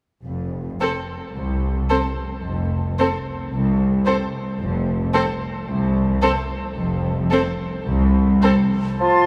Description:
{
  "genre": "quick classical-period movement for symphony orchestra",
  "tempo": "110 BPM",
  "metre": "4/4",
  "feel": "rubato",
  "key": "F major",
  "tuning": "A4 = 445 Hz",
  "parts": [
    { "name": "warm chamber cello section", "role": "bass", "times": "0.3-8.3 s", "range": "C2 to F2", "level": "-25 LUFS", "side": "equal", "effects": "none" },
    { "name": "warm studio double bass section", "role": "bass", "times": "0.3-8.3 s", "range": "F1 to C2", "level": "-26 LUFS", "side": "equal", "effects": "none" },
    { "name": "warm chamber violin section", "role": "melody", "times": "0.8-8.5 s", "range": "C5", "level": "-32 LUFS", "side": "equal", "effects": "none" },
    { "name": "rich chamber violin section", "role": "second line", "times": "0.8-8.5 s", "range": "A4", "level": "-29 LUFS", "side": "equal", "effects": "none" },
    { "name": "warm studio viola section", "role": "accompaniment", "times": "0.8-8.5 s", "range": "C4", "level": "-31 LUFS", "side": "equal", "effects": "none" },
    { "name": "flute section", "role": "second line", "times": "9.0-9.3 s", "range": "C6", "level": "-25 LUFS", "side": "equal", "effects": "none" },
    { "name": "mellow clarinet", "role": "second line", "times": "9.0-9.3 s", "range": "F4", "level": "-22 LUFS", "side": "equal", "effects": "none" },
    { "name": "warm oboe", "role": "second line", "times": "9.0-9.3 s", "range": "A5", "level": "-20 LUFS", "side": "equal", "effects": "none" },
    { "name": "warm bassoon", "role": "accompaniment", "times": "9.0-9.3 s", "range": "F3", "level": "-22 LUFS", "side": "equal", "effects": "none" }
  ],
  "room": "wet cathedral reverb, RT60 6.8 s",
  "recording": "recorded in a church or concert hall",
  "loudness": "-21 LUFS",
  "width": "mono",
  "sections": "0.3-9.0 A section",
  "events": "none",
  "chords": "0.3 F5"
}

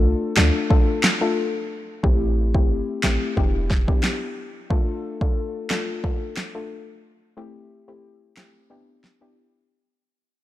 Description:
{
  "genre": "dancehall",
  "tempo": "90 BPM",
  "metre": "4/4",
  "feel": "straight",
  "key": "D dorian",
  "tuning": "A4 = 445 Hz",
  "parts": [
    { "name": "soft round pluck", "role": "accompaniment", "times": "0.0-9.4 s", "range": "A3 to A4", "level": "-26 LUFS", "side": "left 4 dB", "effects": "chorus" },
    { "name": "clean 808-style bass", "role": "bass", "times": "0.0-3.9 s", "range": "E1 to D2", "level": "-22 LUFS", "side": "right 1 dB", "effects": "none" },
    { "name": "deep house drum kit", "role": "drums", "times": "0.4-9.2 s", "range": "handclaps, kick drum, snare drum", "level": "-21 LUFS", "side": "equal", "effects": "none" }
  ],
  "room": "digital ambience",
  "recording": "blown-out, overdriven recording, overdrive",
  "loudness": "-20 LUFS",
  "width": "side -14 dB against mid",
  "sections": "0.0-10.0 A section",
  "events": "fade-out 0.0-10.0; break 9.4-10.0",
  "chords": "0.0 Dm; 2.0 Am7; 3.4 Em7; 4.7 Dm; 7.4 Am7; 8.7 Em7"
}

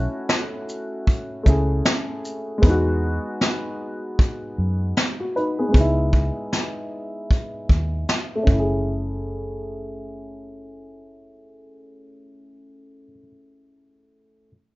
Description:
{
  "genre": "lo-fi hip hop",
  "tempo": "77 BPM",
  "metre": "4/4",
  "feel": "swing 60% on 16ths",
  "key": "F# dorian",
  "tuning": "A4 = 440 Hz",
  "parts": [
    { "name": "dark upright piano", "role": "accompaniment", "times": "0.0-14.5 s", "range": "G#3 to C#5", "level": "-26 LUFS", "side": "equal", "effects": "cassette tape, low-pass filter" },
    { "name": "vintage muted fingered electric bass", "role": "bass", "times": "0.0-13.2 s", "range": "F#1 to F#2", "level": "-23 LUFS", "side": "equal", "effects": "none" },
    { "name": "vintage brush drum kit", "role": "drums", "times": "0.3-8.7 s", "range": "hi-hat, kick drum, shaker, snare drum", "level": "-18 LUFS", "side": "equal", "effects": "none" }
  ],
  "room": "light reverb",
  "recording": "rough home demo mix, nothing above 7.6 kHz",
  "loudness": "-20 LUFS",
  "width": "side -19 dB against mid",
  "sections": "0.0-8.9 A section; 8.9-12.0 B section",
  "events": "filter sweep on upright piano 0.0-8.9",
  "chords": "0.0 B7sus4 (rootless); 2.6 Emaj7; 5.7 C#m9; 8.5 F#m9"
}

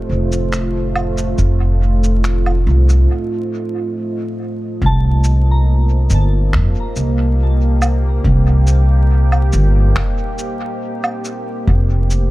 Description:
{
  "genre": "ambient dub",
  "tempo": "70 BPM",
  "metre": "4/4",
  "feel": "straight",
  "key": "unclear",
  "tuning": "A4 = 440 Hz",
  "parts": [
    { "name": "deep dark ambient pad", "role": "sustained chords", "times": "0.0-12.3 s", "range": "A3 to Eb5", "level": "-22 LUFS", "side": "right 1 dB", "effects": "chorus, built-in reverb" },
    { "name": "upright bass", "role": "bass", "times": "0.1-12.3 s", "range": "F1 to F2", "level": "-13 LUFS", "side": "equal", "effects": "none" },
    { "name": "electronic cabasa, finger snaps and woodblock", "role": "drums", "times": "0.3-12.3 s", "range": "none", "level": "-25 LUFS", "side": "right 1 dB", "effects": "dub echo" },
    { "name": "electronic kick drum", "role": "drums", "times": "1.4-11.9 s", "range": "none", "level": "-19 LUFS", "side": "equal", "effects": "overdrive" },
    { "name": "soft synth bell", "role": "arpeggios", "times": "4.9-11.7 s", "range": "A5 to Bb5", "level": "-29 LUFS", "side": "equal", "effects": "chorus, tape echo" }
  ],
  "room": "digital ambience",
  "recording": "dark, warm production, vinyl crackle",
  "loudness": "-13 LUFS",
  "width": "side -18 dB against mid",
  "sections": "0.0-4.8 A section; 4.8-12.3 B section",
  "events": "break 3.1-4.8",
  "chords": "0.0 F7; 4.8 Cm7; 11.7 F"
}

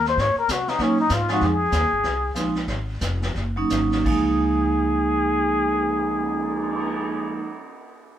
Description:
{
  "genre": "jazz, small-group swing and bop",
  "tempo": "164-193 BPM",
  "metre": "4/4",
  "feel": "swing 61% on 8ths",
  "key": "Db major",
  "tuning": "A4 = 440 Hz",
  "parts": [
    { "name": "trumpet with plunger mute", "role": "melody", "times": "0.0-7.4 s", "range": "Db4 to Db5", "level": "-23 LUFS", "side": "left 3 dB", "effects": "none" },
    { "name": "upright bass", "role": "bass", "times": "0.0-7.4 s", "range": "F1 to C3", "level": "-27 LUFS", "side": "equal", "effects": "none" },
    { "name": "vintage brush drum kit", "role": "drums", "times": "0.1-6.9 s", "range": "brushed snare drum, crash cymbal, cymbal swell, hi-hat, kick drum, snare drum", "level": "-30 LUFS", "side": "equal", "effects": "none" },
    { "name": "vibraphone with medium hard mallets", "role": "accompaniment", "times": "0.8-7.4 s", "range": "F3 to Eb4", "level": "-23 LUFS", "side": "right 3 dB", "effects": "none" }
  ],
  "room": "moderate studio reverb, RT60 0.6 s",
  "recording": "band playing live in one room",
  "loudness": "-20 LUFS",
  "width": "side -10 dB against mid",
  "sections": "0.0-4.1 A section; 4.1-7.0 B section",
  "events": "slowing down 1.4-4.1",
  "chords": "0.2 Ab7sus4; 1.4 Fm7; 2.7 Ab7sus4; 4.1 Db69"
}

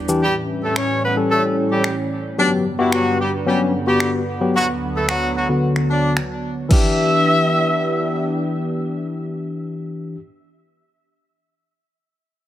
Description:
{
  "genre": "dance-pop",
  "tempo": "111 BPM",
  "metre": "4/4",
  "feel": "straight",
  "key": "E dorian",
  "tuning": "A4 = 435 Hz",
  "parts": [
    { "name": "sweeping resonant pad", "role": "sustained chords", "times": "0.0-10.2 s", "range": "D2 to G4", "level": "-24 LUFS", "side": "right 2 dB", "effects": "lush chorus, sidechain pumping" },
    { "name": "barky tine electric piano", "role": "accompaniment", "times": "0.1-10.2 s", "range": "D3 to A4", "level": "-20 LUFS", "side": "left 3 dB", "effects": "sidechain pumping" },
    { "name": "deep house drum kit", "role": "drums", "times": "0.1-6.8 s", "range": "crash cymbal, finger snaps, kick drum, shaker", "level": "-20 LUFS", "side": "equal", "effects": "none" },
    { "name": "clear horn section", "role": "melody", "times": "0.2-8.3 s", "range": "E3 to E5", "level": "-21 LUFS", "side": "equal", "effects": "sidechain pumping, tape echo" }
  ],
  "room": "light reverb",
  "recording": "none",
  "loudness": "-17 LUFS",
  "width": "side -12 dB against mid",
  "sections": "0.0-6.7 A section; 6.7-11.0 B section",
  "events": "kick muted 5.6-6.7",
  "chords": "0.2 A7; 2.4 Gmaj7; 4.5 D6; 6.7 Em7"
}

